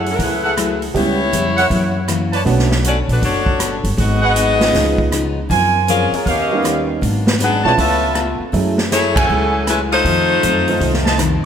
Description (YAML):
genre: jazz, big band swing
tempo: 158 BPM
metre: 4/4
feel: swing 65% on 8ths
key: unclear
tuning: A4 = 442 Hz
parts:
  - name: picked steel-string acoustic guitar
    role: accompaniment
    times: 0.0-11.5 s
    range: F2 to C#5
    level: -23 LUFS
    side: left 4 dB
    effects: none
  - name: clear trumpet section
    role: stabs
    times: 0.0-11.1 s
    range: B3 to A5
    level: -20 LUFS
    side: right 3 dB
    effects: none
  - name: upright bass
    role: bass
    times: 0.0-11.4 s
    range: F#1 to F#2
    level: -20 LUFS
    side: equal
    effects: none
  - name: bright saxophone section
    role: melody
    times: 0.1-11.4 s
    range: E3 to F#5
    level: -18 LUFS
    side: left 2 dB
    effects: none
  - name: swinging big-band drum kit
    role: drums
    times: 0.1-11.3 s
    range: hi-hat, kick drum, ride cymbal, rim click, snare drum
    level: -21 LUFS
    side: right 1 dB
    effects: none
  - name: clear upright piano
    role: accompaniment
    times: 0.9-11.2 s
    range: E#3 to G4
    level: -23 LUFS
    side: right 5 dB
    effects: none
room: moderate concert hall reverb, RT60 2.3 s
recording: none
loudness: -13 LUFS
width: side -8 dB against mid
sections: 0.0-11.5 A section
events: band accent 9.1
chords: 0.0 F#m9; 0.9 C#m7b5; 1.7 F#7; 2.5 Bm9; 4.0 G#m7; 4.7 C#9; 5.5 F#maj9#11; 6.3 D#7b13; 7.0 G#m7b5; 7.8 C#7alt; 8.5 F#m9; 10.1 F7